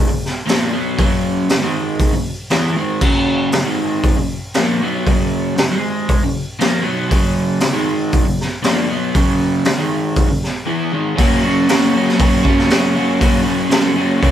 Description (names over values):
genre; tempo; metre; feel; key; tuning
garage rock duo or trio; 118 BPM; 4/4; straight; F# mixolydian; A4 = 440 Hz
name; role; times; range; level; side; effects
crunchy overdriven guitar; riff; 0.0-14.3 s; F#2 to F#4; -16 LUFS; equal; none
raw garage drum kit; drums; 0.3-14.3 s; crash cymbal, hi-hat, kick drum, snare drum; -17 LUFS; equal; none
room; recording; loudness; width
light reverb; band playing live in one room; -14 LUFS; side -10 dB against mid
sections
0.0-11.2 A section; 11.2-14.3 B section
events
break 10.7-11.2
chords
0.1 F#; 1.6 G#5; 2.1 F#5; 3.7 G#5; 4.2 F#; 5.7 G#5; 6.2 F#; 7.7 G#5; 8.3 F#; 9.8 G#5; 10.3 F#5; 11.2 F#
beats
0.48 | 0.99 1.50 2.01 2.52 | 3.03 3.54 4.05 4.56 | 5.07 5.58 6.09 6.60 | 7.11 7.62 8.13 8.64 | 9.15 9.66 10.16 10.67 | 11.18 11.69 12.20 12.70 | 13.21 13.72 14.22